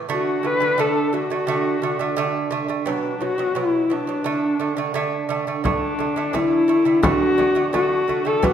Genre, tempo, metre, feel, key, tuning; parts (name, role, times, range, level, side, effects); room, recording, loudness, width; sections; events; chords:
mongolian traditional, Mongolian folk; 86 BPM; 4/4; straight; D gong mode; A4 = 440 Hz
lute; arpeggios; 0.0-8.5 s; B2 to B3; -22 LUFS; right 6 dB
dark horsehead fiddle; melody; 0.1-8.5 s; D4 to B4; -21 LUFS; left 3 dB
frame drum; percussion; 5.6-8.5 s; -24 LUFS; left 2 dB
wet recital hall reverb, RT60 1.4 s; -18 LUFS; side -9 dB against mid
0.0-5.7 A section; 5.7-8.5 B section
0.1 D5; 2.9 B5; 4.3 D5